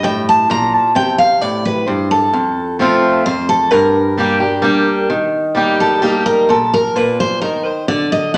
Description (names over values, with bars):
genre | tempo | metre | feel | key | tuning
bluegrass | 130 BPM | 3/4 | straight | unclear | A4 = 440 Hz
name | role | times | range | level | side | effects
picked steel-string acoustic guitar | melody | 0.0-8.4 s | G4 to Bb5 | -17 LUFS | equal | none
picked swing-style acoustic guitar | accompaniment | 0.0-8.4 s | F2 to G4 | -18 LUFS | equal | none
room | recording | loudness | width
wet large studio reverb, RT60 1.1 s | none | -15 LUFS | mono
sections
0.0-5.1 A section; 5.1-8.4 B section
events
steel-string acoustic guitar solo 5.1-8.4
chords
0.0 Gm; 1.0 C5; 2.3 F; 3.7 Gm; 5.1 Eb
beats
0.04 0.50 | 0.96 1.42 1.88 | 2.34 2.80 3.26 | 3.72 4.18 4.65 | 5.11 5.57 6.03 | 6.49 6.95 7.42 | 7.88 8.34